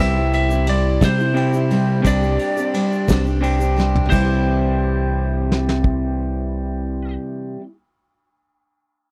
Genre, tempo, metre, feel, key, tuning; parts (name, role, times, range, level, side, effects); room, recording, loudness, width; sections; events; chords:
folk rock and heartland rock; 58 BPM (dotted quarters); 6/8; straight; C major; A4 = 440 Hz
lightly driven lead guitar; melody; 0.0-7.1 s; C5 to E5; -28 LUFS; equal
picked twelve-string acoustic guitar; accompaniment; 0.0-7.7 s; C3 to G4; -25 LUFS; equal
electric guitar through a small old amp; riff; 0.0-7.6 s; C3 to G4; -27 LUFS; equal
picked electric bass; bass; 0.0-7.2 s; C2 to C3; -23 LUFS; equal
soft brush drum kit; drums; 0.3-6.0 s; crash cymbal, kick drum, ride cymbal, snare drum, toms; -25 LUFS; equal
egg shaker; percussion; 0.3-4.4 s; -44 LUFS; equal
little or no reverb; dry, close 1970s-style studio recording; -19 LUFS; mono
0.0-4.1 A section; 4.1-8.2 B section
drum fill 3.8-4.1
0.0 C; 2.0 Csus2; 4.1 C